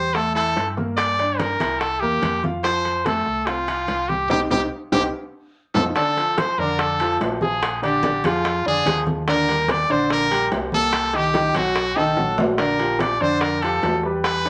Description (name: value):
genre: Afro-Cuban jazz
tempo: 145 BPM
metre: 4/4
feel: straight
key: F major, Bb major from 6.0 s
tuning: A4 = 440 Hz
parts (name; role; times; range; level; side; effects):
- brilliant trumpet; melody; 0.0-14.5 s; F4 to D5; -24 LUFS; equal; none
- warm baby grand piano; accompaniment; 0.0-14.5 s; D3 to F5; -27 LUFS; equal; none
- fingered electric bass; bass; 0.0-14.5 s; Bb1 to G2; -33 LUFS; equal; none
- bongos; percussion; 0.1-14.5 s; none; -30 LUFS; equal; none
- congas; percussion; 0.2-14.5 s; none; -31 LUFS; equal; none
- timbales; percussion; 0.2-14.5 s; none; -31 LUFS; equal; none
room: wet studio reverb, RT60 0.5 s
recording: none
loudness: -21 LUFS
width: mono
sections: 0.0-6.0 A section; 6.0-14.5 B section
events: band accent 4.3-6.0; drum fill 5.3-6.0, 12.0-12.6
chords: 0.0 A7(no3); 1.0 Gm; 1.8 C7; 2.6 F; 4.3 Cm; 5.1 F7; 6.0 Bbmaj7; 7.6 Bb7; 9.3 Ebmaj7; 10.9 Cm7; 11.8 B7; 12.6 Bb6